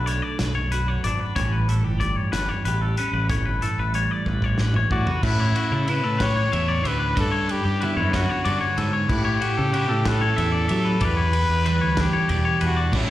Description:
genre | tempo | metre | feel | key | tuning
math rock and midwest emo | 62 BPM (dotted quarters) | 6/8 | straight | unclear | A4 = 439 Hz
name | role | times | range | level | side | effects
twelve-string electric guitar | accompaniment | 0.0-13.1 s | E2 to G4 | -28 LUFS | right 3 dB | phaser
twangy electric guitar | arpeggios | 0.0-13.1 s | F#4 to E5 | -27 LUFS | left 5 dB | slapback echo
growling fingered electric bass | bass | 0.0-13.1 s | G1 to F#3 | -24 LUFS | equal | overdrive
loose indie drum kit | drums | 0.1-13.1 s | crash cymbal, hi-hat, kick drum, ride cymbal, snare drum, toms | -28 LUFS | equal | none
clear trumpet | melody | 4.9-13.1 s | E4 to C#5 | -26 LUFS | left 2 dB | slapback echo
crunchy overdriven guitar | riff | 12.9-13.1 s | A2 to E4 | -24 LUFS | right 1 dB | none
room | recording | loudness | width
light reverb | live gig heard through the venue's PA, recital hall reverb | -20 LUFS | side -14 dB against mid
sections
0.0-5.2 A section; 5.2-13.1 B section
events
drum fill 4.3-5.2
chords
0.0 Bm7; 1.4 A7; 5.2 A13; 7.2 Gmaj7#11; 9.1 A13; 11.0 Em7

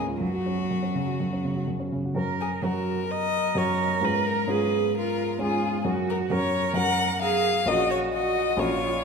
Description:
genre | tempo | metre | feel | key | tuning
quick classical-period movement for piano trio | 130 BPM | 4/4 | rubato | F# major | A4 = 440 Hz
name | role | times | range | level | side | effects
clear violin | melody | 0.0-9.0 s | F#4 to F#5 | -28 LUFS | left 6 dB | none
rich cello | second line | 0.0-9.0 s | F#3 to A#4 | -28 LUFS | right 8 dB | none
warm grand piano | accompaniment | 0.0-9.0 s | A#1 to A#4 | -27 LUFS | equal | none
room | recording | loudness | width
moderate concert hall reverb, RT60 2.2 s | minimal, uncompressed stereo recording | -23 LUFS | side -5 dB against mid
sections
0.0-2.2 A section; 2.2-9.0 A section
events
none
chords
0.2 F#5; 2.2 F#; 4.0 C#7/G#; 5.9 F#; 7.7 F#/A#

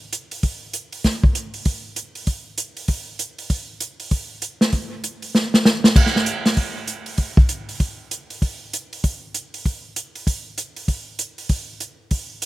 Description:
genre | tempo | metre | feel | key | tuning
jazz | 195 BPM | 4/4 | swing 62% on 8ths | none | none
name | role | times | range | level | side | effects
swinging big-band drum kit | drums | 0.1-12.5 s | crash cymbal, hi-hat, kick drum, snare drum | -19 LUFS | equal | none
room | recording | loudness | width
light reverb | recorded outdoors, with no room sound | -20 LUFS | side -17 dB against mid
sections
0.0-6.0 A section; 6.0-12.5 A section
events
drum fill 5.3-6.0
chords
none

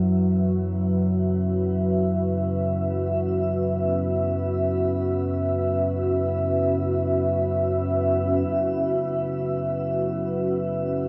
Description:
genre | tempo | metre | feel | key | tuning
dark ambient drone | free time | none | none | unclear | A4 = 439 Hz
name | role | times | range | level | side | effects
deep dark ambient pad | sustained chords | 0.0-11.1 s | F#3 to E5 | -26 LUFS | equal | chorus, built-in reverb, shimmer reverb
deep rumbling drone | drone | 0.0-11.1 s | F#2 to F#3 | -29 LUFS | equal | built-in reverb, subtle chorus
bronze singing bowl | texture | 0.0-8.5 s | none | barely audible | none | none
room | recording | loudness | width
wet lush hall reverb, RT60 2.9 s | dreamy mix soaked in reverb | -24 LUFS | mono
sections
0.0-8.5 A section; 8.5-11.1 B section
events
none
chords
0.0 F#7sus4

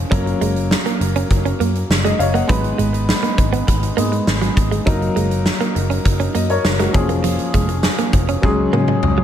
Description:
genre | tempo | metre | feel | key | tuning
1980s-style pop | 101 BPM | 4/4 | straight | F# major | A4 = 441 Hz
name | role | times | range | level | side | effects
clear concert grand piano | accompaniment | 0.0-9.2 s | E#3 to F#5 | -21 LUFS | left 2 dB | none
vintage muted picked electric bass | bass | 0.0-9.2 s | E#1 to C#3 | -20 LUFS | equal | none
direct-recorded clean electric guitar | riff | 0.1-9.2 s | E#3 to D#4 | -24 LUFS | right 7 dB | wide subtle chorus, tape echo
huge arena drum kit | drums | 0.1-9.2 s | hi-hat, kick drum, snare drum, toms | -19 LUFS | equal | gated reverb
room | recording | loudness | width
light reverb, studio reverb | none | -15 LUFS | side -10 dB against mid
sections
0.0-9.2 A section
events
drum fill 8.4-9.2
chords
0.1 F#; 2.5 G#m; 4.9 D#m/F#; 6.9 A#m7/E#; 8.4 C#sus4

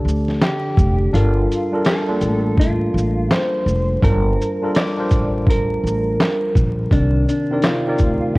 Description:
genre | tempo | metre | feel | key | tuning
lo-fi hip hop | 83 BPM | 4/4 | swing 64% on 16ths | G minor | A4 = 435 Hz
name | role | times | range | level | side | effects
tine electric piano | accompaniment | 0.0-8.4 s | C3 to D5 | -22 LUFS | equal | medium stereo tremolo, low-pass filter
upright bass | bass | 0.0-8.4 s | F1 to D2 | -19 LUFS | equal | none
trip hop sampler-style drum kit | drums | 0.1-8.4 s | handclaps, hi-hat, kick drum, shaker, snare drum | -19 LUFS | equal | none
mellow electric guitar | melody | 0.4-8.4 s | D4 to D5 | -22 LUFS | equal | low-pass filter, tape echo
room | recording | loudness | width
light reverb | worn, warbling old tape, cassette tape, vinyl crackle, warbly pitch drift | -15 LUFS | side -22 dB against mid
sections
0.0-8.4 A section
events
kick muted 1.1-2.6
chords
0.0 D7sus4; 1.1 Gm9; 6.9 Cm9

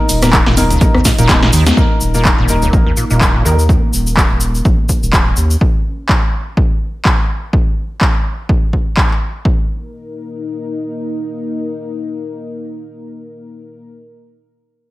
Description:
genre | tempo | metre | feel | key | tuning
acid house | 125 BPM | 4/4 | swing 56% on 16ths | unclear | A4 = 442 Hz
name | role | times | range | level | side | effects
dark analog pad | sustained chords | 0.0-13.8 s | Bb3 to Eb5 | -24 LUFS | left 1 dB | chorus, sidechain pumping
warm baby grand piano | stabs | 0.0-3.6 s | Bb3 to Bb4 | -20 LUFS | left 1 dB | dub echo
saturated sub bass | bass | 0.1-5.6 s | Eb1 to Eb2 | -16 LUFS | equal | sidechain pumping
punchy analog drum machine | drums | 0.1-9.2 s | congas, handclaps, hi-hat, rim click, snare drum | -16 LUFS | equal | none
tube shaker | percussion | 0.1-5.6 s | none | -22 LUFS | left 2 dB | none
liquid acid bass | riff | 0.2-3.6 s | Eb1 to Eb3 | -17 LUFS | equal | overdrive, analog chorus, cassette tape
electronic kick drum | drums | 0.3-9.6 s | none | -13 LUFS | equal | none
room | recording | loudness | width
digital ambience | none | -11 LUFS | side -18 dB against mid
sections
0.0-1.8 A section; 1.8-9.5 B section; 9.5-13.3 C section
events
drop 0.0-1.8; drum fill 1.1-1.8; band accent 1.7; filter sweep on acid bass 1.8-3.7; filter sweep on analog synth pad 1.8-7.5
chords
0.0 Eb5

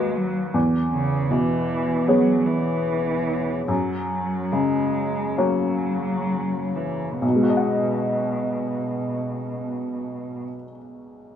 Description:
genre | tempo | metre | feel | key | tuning
neoclassical piano and strings | 62-80 BPM | 4/4 | rubato | B major | A4 = 440 Hz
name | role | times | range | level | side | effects
muted cello | second line | 0.0-10.4 s | B2 to G#3 | -26 LUFS | right 2 dB | none
clear upright piano | accompaniment | 0.0-11.4 s | B1 to F#5 | -23 LUFS | left 1 dB | none
room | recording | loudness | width
moderate studio reverb, RT60 0.7 s | band playing live in one room | -21 LUFS | side -9 dB against mid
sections
0.0-7.2 A section; 7.2-11.0 B section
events
slowing down 0.0-7.2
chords
0.0 B6/D#; 0.5 E6; 3.7 F#; 7.2 B6

